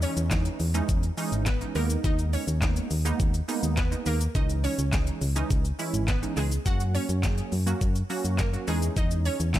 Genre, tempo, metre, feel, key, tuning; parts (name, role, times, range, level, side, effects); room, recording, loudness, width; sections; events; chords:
dance-pop; 104 BPM; 4/4; straight; C# dorian; A4 = 440 Hz
glassy wavetable pluck; melody; 0.0-9.6 s; G#3 to F#5; -34 LUFS; right 1 dB; chorus, ping-pong delay
funky polysynth comp; accompaniment; 0.0-9.6 s; E3 to G#4; -32 LUFS; right 4 dB; chorus, sidechain pumping
solid FM bass; bass; 0.0-9.6 s; G#1 to F#2; -27 LUFS; equal; sidechain pumping
pop drum kit; drums; 0.0-9.6 s; handclaps, hi-hat, kick drum, shaker, snare drum; -28 LUFS; equal
downlifter; sound effects; 0.0-2.0 s; -47 LUFS; equal
digital ambience; -24 LUFS; side -13 dB against mid
0.0-9.6 A section
0.0 C#madd9/E; 1.8 G#madd9/D#; 4.3 C#madd9; 6.7 F#; 8.7 C#madd9/E